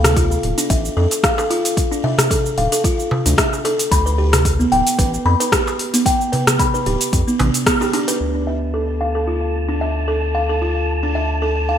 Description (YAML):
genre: organic downtempo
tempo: 112 BPM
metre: 4/4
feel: swing 54% on 16ths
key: D dorian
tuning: A4 = 439 Hz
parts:
  - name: buzzing kalimba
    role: arpeggios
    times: 0.0-11.8 s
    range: B3 to B5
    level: -19 LUFS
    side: equal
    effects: low-pass filter, digital delay
  - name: round analog bass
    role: bass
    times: 0.0-11.8 s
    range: D1 to F2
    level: -20 LUFS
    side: equal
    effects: sidechain pumping
  - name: deep house drum kit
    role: drums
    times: 0.0-8.2 s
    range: cabasa, hi-hat, rim click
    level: -20 LUFS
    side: equal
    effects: overdrive, low-pass filter on perc, low-pass filter on hats, low-pass filter on snare, low-pass filter on room, gated reverb
  - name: darbuka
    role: percussion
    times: 0.0-8.2 s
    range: none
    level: -25 LUFS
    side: equal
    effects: none
  - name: electronic kick drum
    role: drums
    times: 0.2-7.8 s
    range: none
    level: -20 LUFS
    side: equal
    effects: overdrive
  - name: wind-like tuned noise texture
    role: texture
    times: 9.0-11.8 s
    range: A5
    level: -27 LUFS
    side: right 3 dB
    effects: built-in reverb, ensemble chorus
room: moderate plate reverb, RT60 1.6 s, digital ambience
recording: bright 1980s-style digital production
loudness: -15 LUFS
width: side -9 dB against mid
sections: 0.0-8.2 A section; 8.2-11.8 B section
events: band accent 7.7; filter sweep on kalimba 8.2-11.8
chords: 0.0 Dm; 3.9 G/D; 8.2 Dm